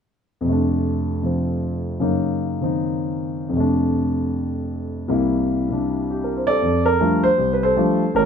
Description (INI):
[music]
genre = solo jazz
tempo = 156 BPM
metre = 4/4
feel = swing 64% on 8ths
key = F major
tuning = A4 = 438 Hz
[part]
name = warm concert grand piano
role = solo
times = 0.4-8.3 s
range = A1 to D5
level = -18 LUFS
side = equal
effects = none
[sound]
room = light reverb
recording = dark, warm production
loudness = -18 LUFS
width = side -7 dB against mid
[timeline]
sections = 0.5-6.6 A section; 6.6-8.3 B section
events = none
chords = 0.5 F6; 2.0 Gb6; 3.5 F6; 5.1 C7; 6.6 F69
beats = | 0.46 0.84 1.23 1.61 | 2.00 2.38 2.77 3.15 | 3.53 3.92 4.30 4.69 | 5.07 5.45 5.84 6.22 | 6.60 6.99 7.37 7.75 | 8.13